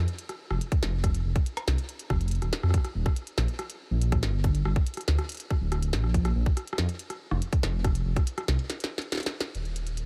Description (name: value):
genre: IDM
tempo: 141 BPM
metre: 4/4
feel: straight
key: unclear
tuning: A4 = 440 Hz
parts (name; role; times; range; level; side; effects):
- dark detuned saw bass; bass; 0.0-10.1 s; D1 to F2; -29 LUFS; equal; none
- glitchy drum kit; drums; 0.1-10.1 s; hi-hat, rim click, snare drum; -36 LUFS; equal; tape echo
- electronic kick drum; drums; 0.7-8.2 s; none; -28 LUFS; equal; none
room: little or no reverb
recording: none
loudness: -28 LUFS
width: mono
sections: 0.0-9.5 A section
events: break 8.7-9.5; drum fill 8.7-9.5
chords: none